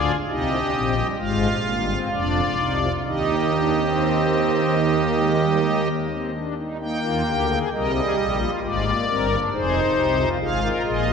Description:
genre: classical, baroque-style 4-part fugue for pipe organ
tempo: 66 BPM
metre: 4/4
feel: straight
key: Eb major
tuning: A4 = 441 Hz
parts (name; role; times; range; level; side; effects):
- pipe organ, strings celeste; solo; 0.0-11.1 s; F1 to G5; -19 LUFS; equal; none
room: wet church reverb, RT60 3.9 s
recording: none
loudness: -19 LUFS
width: side -6 dB against mid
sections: 0.0-6.8 A section; 6.8-11.1 B section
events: none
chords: 0.0 Fm7; 1.2 Bb7 (rootless); 3.1 Eb; 8.6 Fm; 10.4 Bb7(no3)/Ab

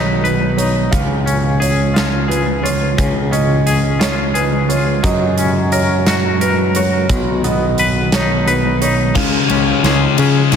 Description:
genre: post-rock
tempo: 58 BPM (dotted quarters)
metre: 6/8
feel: straight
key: unclear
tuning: A4 = 441 Hz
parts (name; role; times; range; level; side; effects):
- warbly tape-like pad; sustained chords; 0.0-10.6 s; A#2 to F#4; -23 LUFS; right 1 dB; chorus, built-in reverb
- felt-muted upright piano; arpeggios; 0.0-10.6 s; B4 to E#5; -22 LUFS; right 4 dB; analog delay
- twangy electric guitar; arpeggios; 0.0-10.6 s; B2 to B4; -20 LUFS; left 3 dB; tremolo, analog delay
- growling picked electric bass; bass; 0.0-10.6 s; B1 to C#3; -18 LUFS; equal; overdrive
- huge arena drum kit; drums; 0.2-10.6 s; crash cymbal, hi-hat, kick drum, ride cymbal, snare drum; -19 LUFS; right 1 dB; none
- thick fuzz guitar; riff; 9.1-10.6 s; C#3 to C#4; -14 LUFS; left 10 dB; distortion
room: light reverb, small room ambience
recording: none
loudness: -13 LUFS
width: side -7 dB against mid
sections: 0.0-9.2 A section; 9.2-10.6 B section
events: build-up 9.2-10.6; drum fill 9.2-10.6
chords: 0.0 B; 0.9 C#; 5.0 F#add9; 7.1 B; 9.2 C#

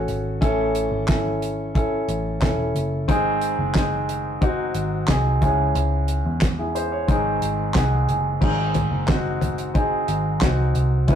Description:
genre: piano-driven pop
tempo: 90 BPM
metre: 4/4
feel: straight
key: unclear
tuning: A4 = 439 Hz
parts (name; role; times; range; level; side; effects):
- clear baby grand piano; accompaniment; 0.0-11.2 s; G#2 to G#5; -23 LUFS; equal; none
- vintage muted picked electric bass; bass; 0.0-11.2 s; E1 to E2; -24 LUFS; equal; none
- damped 70s drum kit; drums; 0.1-11.2 s; crash cymbal, handclaps, hi-hat, kick drum, snare drum, toms; -22 LUFS; equal; none
room: moderate studio reverb, RT60 0.6 s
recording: rough rehearsal-room recording, warm saturation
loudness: -19 LUFS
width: side -9 dB against mid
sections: 0.0-8.4 A section; 8.4-11.2 B section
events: grand piano fill 7.4-8.4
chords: 0.0 F#m; 3.1 G#; 5.4 C#m; 7.1 G#

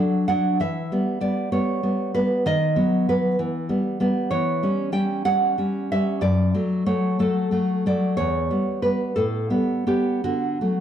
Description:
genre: romantic piece for solo classical guitar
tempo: 53-66 BPM (dotted quarters)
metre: 6/8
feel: rubato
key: D major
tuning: A4 = 440 Hz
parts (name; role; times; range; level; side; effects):
- nylon-string guitar; solo; 0.0-10.8 s; E2 to G5; -20 LUFS; equal; none
room: moderate recital hall reverb, RT60 1.6 s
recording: dark, warm production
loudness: -20 LUFS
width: side -10 dB against mid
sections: 0.0-10.8 A section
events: none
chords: 0.0 D; 0.6 Em; 2.5 B/D#; 3.4 Em; 4.3 C#dim/E; 6.2 D/F#; 8.2 Em; 9.2 Asus2; 10.2 D

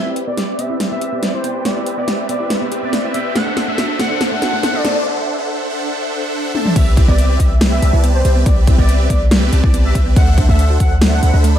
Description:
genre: future bass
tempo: 141 BPM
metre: 4/4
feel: half-time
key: C major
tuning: A4 = 441 Hz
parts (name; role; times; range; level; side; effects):
- warm velvety synth lead; melody; 0.0-11.6 s; C5 to F#5; -24 LUFS; equal; chorus, sidechain pumping, tape echo
- supersaw chords; riff; 0.0-11.6 s; C4 to B5; -21 LUFS; right 1 dB; phaser, sidechain pumping, low-pass filter
- riser; sound effects; 0.0-5.1 s; none; -31 LUFS; left 1 dB; none
- thumb-piano-like synth pluck; arpeggios; 0.1-11.5 s; A3 to B4; -26 LUFS; right 4 dB; chorus, sidechain pumping, tape echo
- big-room dance drum kit; drums; 0.2-11.5 s; crash cymbal, hi-hat, snare drum, toms; -19 LUFS; equal; none
- warm 808-style bass; bass; 6.8-11.6 s; C2 to D2; -13 LUFS; equal; sidechain pumping
- electronic kick drum; drums; 6.8-10.9 s; none; -14 LUFS; equal; overdrive
room: light reverb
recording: dark, warm production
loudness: -13 LUFS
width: side -10 dB against mid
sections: 0.0-6.8 A section; 6.8-11.6 B section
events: build-up 0.0-6.8; drum fill 0.0-5.1, 6.5; riser 0.0-5.1; filter sweep on supersaw synth 0.0-6.8; filter sweep on synth arpeggio sound 0.0-6.8; break 5.1-6.8; drop 6.8-11.6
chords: 0.0 Cmaj7; 3.4 D7; 6.8 Cmaj7; 10.2 D7

